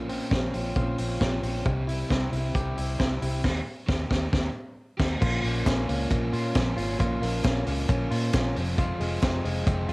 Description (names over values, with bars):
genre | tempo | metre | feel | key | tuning
jangly indie pop | 135 BPM | 4/4 | straight | unclear | A4 = 440 Hz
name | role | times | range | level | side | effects
raw garage guitar | accompaniment | 0.0-9.9 s | F2 to G4 | -35 LUFS | right 2 dB | overdrive, cassette tape
direct-recorded clean electric guitar | arpeggios | 0.0-9.9 s | F2 to G4 | -31 LUFS | left 1 dB | cassette tape, analog delay
vintage muted fingered electric bass | bass | 0.0-9.9 s | F1 to Bb2 | -30 LUFS | equal | none
vintage drum kit | drums | 0.1-9.9 s | crash cymbal, hi-hat, kick drum, ride cymbal, snare drum | -27 LUFS | equal | cassette tape
group handclap | percussion | 5.7-9.8 s | none | -47 LUFS | right 2 dB | none
room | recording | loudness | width
light reverb | home recording on cassette | -24 LUFS | side -24 dB against mid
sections
0.0-5.2 A section; 5.2-9.9 B section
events
band accent 3.4-5.2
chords
0.0 Bbmadd9; 1.7 C; 3.4 Eb; 5.2 Bbm; 8.6 Fm